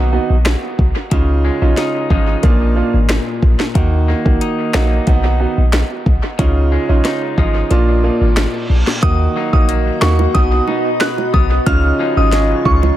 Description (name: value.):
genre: dancehall.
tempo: 91 BPM.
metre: 4/4.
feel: straight.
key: Eb minor.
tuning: A4 = 441 Hz.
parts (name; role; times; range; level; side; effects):
clear baby grand piano; accompaniment; 0.0-13.0 s; Bb3 to Gb4; -19 LUFS; right 4 dB; sidechain pumping, dub echo.
clean electric guitar; arpeggios; 0.0-13.0 s; Bb2 to Eb4; -23 LUFS; left 7 dB; dub echo.
clean 808-style bass; bass; 0.0-12.9 s; Ab1 to Eb2; -14 LUFS; equal; none.
afro-pop drum kit; drums; 0.5-12.8 s; finger snaps, hi-hat, kick drum, rim click, snare drum; -18 LUFS; equal; dub echo.
reverse cymbal; sound effects; 8.0-9.0 s; none; -28 LUFS; right 2 dB; none.
glassy synth bell; melody; 9.0-12.8 s; Db6 to F#6; -20 LUFS; equal; chorus, tremolo, dub echo.
glassy FM pad; sustained chords; 9.7-13.0 s; F4 to Db6; -22 LUFS; left 2 dB; ensemble chorus, built-in reverb, sidechain pumping.
bongos; percussion; 10.2-13.0 s; none; -28 LUFS; right 8 dB; none.
room: light reverb.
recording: echo-heavy mix.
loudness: -12 LUFS.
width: side -13 dB against mid.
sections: 0.0-9.0 A section; 9.0-13.0 B section.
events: kick muted 7.7-9.0; reverse cymbal 8.0-9.0.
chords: 0.0 Ebm; 1.1 Dbadd9; 2.4 Bb; 3.8 Ebm; 6.4 Dbadd9; 7.7 Bb; 9.0 Ebm; 10.3 B; 11.7 Dbadd9.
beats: 0.46 | 1.11 1.77 2.43 3.09 | 3.75 4.41 5.07 5.73 | 6.39 7.05 7.71 8.37 | 9.03 9.69 10.35 11.01 | 11.66 12.32.